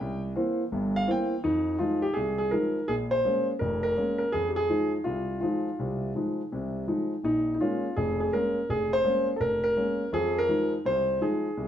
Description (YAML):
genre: solo jazz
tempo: 166 BPM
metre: 4/4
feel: swing 65% on 8ths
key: F minor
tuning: A4 = 444 Hz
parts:
  - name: dark concert grand piano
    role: solo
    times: 0.0-11.7 s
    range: F1 to G5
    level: -25 LUFS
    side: equal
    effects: none
room: wet club reverb, RT60 0.8 s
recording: heard from further back in the room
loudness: -25 LUFS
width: side -10 dB against mid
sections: 0.0-1.4 A section; 1.4-11.7 B section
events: grand piano solo 0.0-1.4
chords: 0.0 C7; 1.4 Fm7; 2.9 Bbm7; 4.3 Fm7; 7.2 Bbm7; 10.1 Fm7